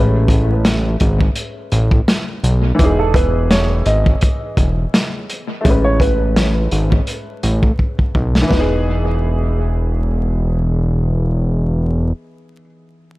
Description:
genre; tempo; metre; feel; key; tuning
hip hop, boom-bap hip-hop; 84 BPM; 4/4; swing 55% on 16ths; E major; A4 = 440 Hz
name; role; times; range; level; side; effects
clear upright piano; accompaniment; 0.0-13.2 s; E3 to B4; -23 LUFS; left 1 dB; cassette tape, high-pass filter, low-pass filter, analog delay
fat analog bass; bass; 0.0-12.1 s; E1 to B1; -16 LUFS; equal; none
crunchy breakbeat drum kit; drums; 0.3-8.7 s; hi-hat, kick drum, snare drum; -17 LUFS; equal; analog delay
warm upright piano; melody; 3.0-10.6 s; A4 to D#5; -23 LUFS; right 2 dB; high-pass filter, low-pass filter, analog delay
room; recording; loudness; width
small room ambience; echo-heavy mix, vinyl crackle; -14 LUFS; side -19 dB against mid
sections
0.0-2.8 A section; 2.8-8.5 B section; 8.5-11.4 C section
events
drum fill 7.8-8.5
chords
0.0 Amaj9; 2.8 Emaj7; 5.6 Amaj9; 8.5 Emaj7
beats
0.65 1.36 2.08 | 2.79 3.50 4.22 4.93 | 5.65 6.36 7.08 7.79 | 8.51 9.22 9.93 10.65

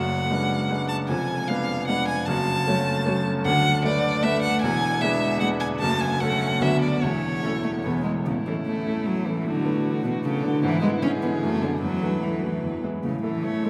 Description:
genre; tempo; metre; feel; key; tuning
quick classical-period movement for piano trio; 152 BPM; 3/4; straight; F# minor, A major from 3.5 s; A4 = 441 Hz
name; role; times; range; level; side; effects
rich violin; melody; 0.0-13.7 s; E4 to A5; -30 LUFS; equal; none
bright grand piano; accompaniment; 0.0-13.7 s; E1 to D5; -27 LUFS; equal; none
rich cello; second line; 0.3-13.7 s; B2 to C#4; -30 LUFS; equal; none
room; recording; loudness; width
wet cathedral reverb, RT60 6.2 s; in a vast, echoing space; -24 LUFS; mono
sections
0.0-8.3 A section; 8.3-13.7 B section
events
none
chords
0.0 G#m7b5/F#; 1.1 Fdim7; 2.3 F#m; 3.5 Bm7/D; 4.6 E7; 5.8 F#m; 6.6 Bm/D; 7.0 A/E; 7.8 E; 8.3 A; 9.5 Bm7/A; 10.6 E/G#; 11.4 D/F#; 11.8 Esus4; 12.6 E; 13.0 A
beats
0.30 0.70 | 1.09 1.49 1.89 | 2.28 2.67 3.06 | 3.45 3.85 4.24 | 4.63 5.02 5.41 | 5.81 6.20 6.61 | 7.02 7.44 7.85 | 8.26 8.66 9.06 | 9.45 9.84 10.24 | 10.63 11.03 11.43 | 11.83 12.23 12.64 | 13.04 13.45

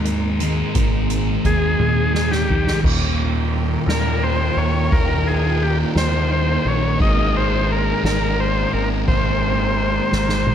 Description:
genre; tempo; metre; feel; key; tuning
psychedelic rock; 58 BPM (dotted quarters); 6/8; straight; Eb major; A4 = 439 Hz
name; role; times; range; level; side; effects
warm symphonic string section; sustained chords; 0.0-10.5 s; Ab3 to G5; -29 LUFS; right 7 dB; none
thick fuzz guitar; riff; 0.0-10.5 s; Eb2 to Ab3; -22 LUFS; left 1 dB; distortion, phaser
deep dub picked electric bass; bass; 0.0-10.5 s; Ab1 to Eb2; -22 LUFS; equal; none
soft-mallet drum kit; drums; 0.1-10.5 s; crash cymbal, hi-hat, kick drum, ride cymbal, snare drum, toms; -23 LUFS; equal; none
overdriven combo organ; melody; 1.5-10.5 s; G4 to Eb5; -22 LUFS; left 2 dB; slapback echo
room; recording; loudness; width
light reverb; none; -16 LUFS; side -9 dB against mid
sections
0.0-2.8 A section; 2.8-10.5 B section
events
transistor combo organ solo 0.0-2.8; drum fill 1.8-2.8, 10.1-10.5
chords
0.0 Abadd9; 2.8 Ebadd9; 7.0 Abadd9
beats
| 0.76 1.80 | 2.85 3.89 | 4.93 5.97 | 7.01 8.05 | 9.08 10.12

